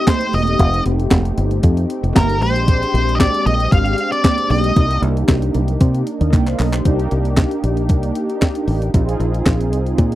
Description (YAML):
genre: early-eighties boogie funk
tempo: 115 BPM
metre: 4/4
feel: straight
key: C minor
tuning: A4 = 437 Hz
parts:
  - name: octave-fuzz lead guitar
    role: melody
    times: 0.0-5.0 s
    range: Bb4 to F5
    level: -19 LUFS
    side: left 1 dB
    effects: distortion, slapback echo
  - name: mellow synth brass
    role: accompaniment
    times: 0.0-10.2 s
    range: Ab3 to G5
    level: -22 LUFS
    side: equal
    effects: chorus
  - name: clean 12-bit digital drum machine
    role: drums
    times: 0.1-10.2 s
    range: handclaps, hi-hat, kick drum, snare drum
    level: -15 LUFS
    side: equal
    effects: none
  - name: congas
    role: percussion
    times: 0.1-6.7 s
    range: none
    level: -26 LUFS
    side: right 12 dB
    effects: none
  - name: fingered electric bass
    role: bass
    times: 0.3-10.2 s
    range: E1 to C3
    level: -18 LUFS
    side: equal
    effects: none
room: little or no reverb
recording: dry, close 1970s-style studio recording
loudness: -14 LUFS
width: side -15 dB against mid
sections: 0.0-6.9 A section; 6.9-10.2 B section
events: drum fill 6.3-6.9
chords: 0.0 F9; 2.4 Bb13; 4.8 Cm9; 8.9 Bb9sus4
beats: 0.07 | 0.59 1.11 1.64 2.16 | 2.68 3.20 3.72 4.25 | 4.77 5.29 5.81 6.33 | 6.85 7.38 7.90 8.42 | 8.94 9.46 9.98